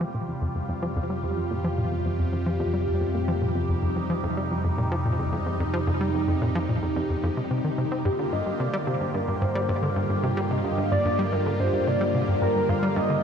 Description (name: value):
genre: ambient, sequencer-driven space music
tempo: 110 BPM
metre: 4/4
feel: straight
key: unclear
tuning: A4 = 440 Hz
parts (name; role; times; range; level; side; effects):
- phased analog pad; sustained chords; 0.0-13.2 s; C3 to G4; -28 LUFS; equal; phaser, chorus
- plucky analog bass; riff; 0.0-13.2 s; F2 to C4; -27 LUFS; equal; analog delay
- analog drone; bass; 0.8-13.2 s; F2 to G2; -30 LUFS; equal; chorus
- pulse-width lead; melody; 8.1-13.2 s; G4 to F5; -27 LUFS; right 1 dB; chorus, analog delay
room: moderate huge ambient reverb, RT60 8.5 s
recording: none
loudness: -23 LUFS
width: side -7 dB against mid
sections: 0.0-13.2 A section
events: filter sweep on analog synth bass 0.0-13.2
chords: 0.0 Fsus2; 8.1 Gm7